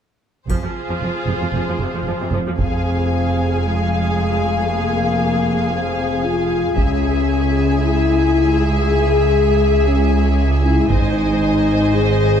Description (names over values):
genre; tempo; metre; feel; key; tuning
cinematic, epic orchestral film score; 115 BPM; 4/4; straight; F minor; A4 = 438 Hz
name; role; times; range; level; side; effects
warm symphonic violin section; second line; 0.5-12.4 s; Ab4 to F5; -26 LUFS; left 4 dB; none
rich symphonic viola section; accompaniment; 0.5-12.4 s; C3 to C5; -25 LUFS; right 1 dB; none
rich studio double bass section; bass; 0.5-12.4 s; F1 to Db2; -21 LUFS; right 2 dB; none
rich symphonic cello section; bass; 0.5-12.4 s; Db2 to Ab2; -23 LUFS; right 2 dB; none
taiko ensemble; drums; 0.5-3.6, 6.8-11.9 s; none; -21 LUFS; right 1 dB; none
triangle; percussion; 0.5-1.5 s; none; -43 LUFS; left 2 dB; none
dark symphonic violin section; melody; 2.6-12.4 s; Ab5; -29 LUFS; left 3 dB; none
dark French horn section; sustained chords; 2.6-12.4 s; Ab3 to Ab4; -19 LUFS; left 5 dB; none
room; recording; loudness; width
moderate scoring stage reverb, RT60 1.9 s; dark, warm production; -15 LUFS; side -8 dB against mid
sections
0.5-2.6 A section; 2.6-12.4 B section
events
none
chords
0.5 Fm; 6.8 Dbm; 10.9 Ab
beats
| 0.50 1.02 1.54 2.06 | 2.59 3.11 3.63 4.16 | 4.68 5.20 5.72 6.24 | 6.77 7.29 7.81 8.33 | 8.84 9.36 9.87 10.39 | 10.90 11.42 11.94